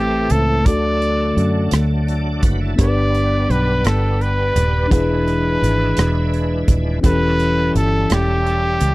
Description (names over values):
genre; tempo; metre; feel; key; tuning
slow gospel; 56 BPM (dotted quarters); 6/8; straight; G major; A4 = 441 Hz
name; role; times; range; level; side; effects
bright trumpet; melody; 0.0-8.9 s; G4 to D5; -21 LUFS; equal; none
mellow tine electric piano; accompaniment; 0.0-8.9 s; G2 to B4; -21 LUFS; left 2 dB; none
bright tonewheel organ; sustained chords; 0.0-8.9 s; E3 to D5; -26 LUFS; right 2 dB; slow rotary speaker, chorus vibrato
fingered electric bass; bass; 0.0-8.9 s; Eb1 to F#2; -19 LUFS; equal; none
natural country drum kit; drums; 0.3-8.9 s; hi-hat, kick drum, rim click; -17 LUFS; equal; none
room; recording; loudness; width
little or no reverb; dry, close 1970s-style studio recording; -15 LUFS; side -20 dB against mid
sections
0.0-8.9 A section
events
none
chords
0.0 Am; 0.7 D; 2.8 G; 4.9 E7; 7.0 A7/E